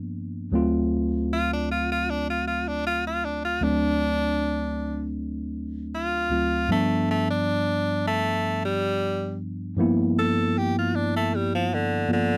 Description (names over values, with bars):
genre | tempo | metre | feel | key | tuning
blues | 78 BPM | 4/4 | straight | unclear | A4 = 439 Hz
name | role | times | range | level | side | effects
tine electric piano | accompaniment | 0.0-12.4 s | D2 to E#4 | -27 LUFS | equal | none
edgy tenor saxophone | melody | 1.3-12.4 s | D3 to A4 | -28 LUFS | equal | none
room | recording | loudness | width
light reverb | dry, close 1970s-style studio recording | -25 LUFS | mono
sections
0.0-12.4 A section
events
tenor saxophone solo 0.0-12.4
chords
0.0 G7#9; 0.5 D7#9; 6.7 G7#9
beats
| 0.53 1.31 2.08 2.85 | 3.62 4.39 5.16 5.93 | 6.70 7.47 8.24 9.01 | 9.78 10.55 11.32 12.09